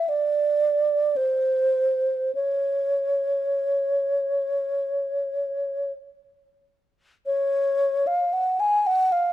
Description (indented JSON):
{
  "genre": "classical, free, expressive piece for unaccompanied alto flute",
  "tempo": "40-59 BPM",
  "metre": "4/4",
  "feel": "rubato",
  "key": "unclear",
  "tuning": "A4 = 440 Hz",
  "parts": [
    { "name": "mellow wooden-headed alto flute", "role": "solo", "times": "0.0-9.3 s", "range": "C5 to Ab5", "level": "-21 LUFS", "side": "right 1 dB", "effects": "none" }
  ],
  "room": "moderate recital hall reverb, RT60 1.6 s",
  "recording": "close, detailed microphones",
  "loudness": "-21 LUFS",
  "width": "side -13 dB against mid",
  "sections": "0.0-7.2 A section; 7.2-9.3 A section",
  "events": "none",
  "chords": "none"
}